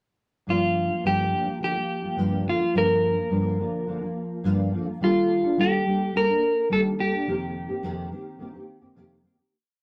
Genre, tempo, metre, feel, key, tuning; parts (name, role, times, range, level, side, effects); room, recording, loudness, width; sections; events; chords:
indie pop; 106 BPM; 4/4; straight; G minor; A4 = 437 Hz
clean electric guitar; melody; 0.5-8.9 s; F4 to Bb4; -27 LUFS; equal; lush chorus, slapback echo
nylon-string guitar; accompaniment; 0.5-9.5 s; F2 to A4; -28 LUFS; equal; ensemble chorus, warbly pitch drift
light reverb; dry, close 1970s-style studio recording; -24 LUFS; mono
0.5-9.5 verse
fade-out 7.3-9.5
0.5 Gm7; 5.0 Ebmaj9#11; 7.3 F9sus4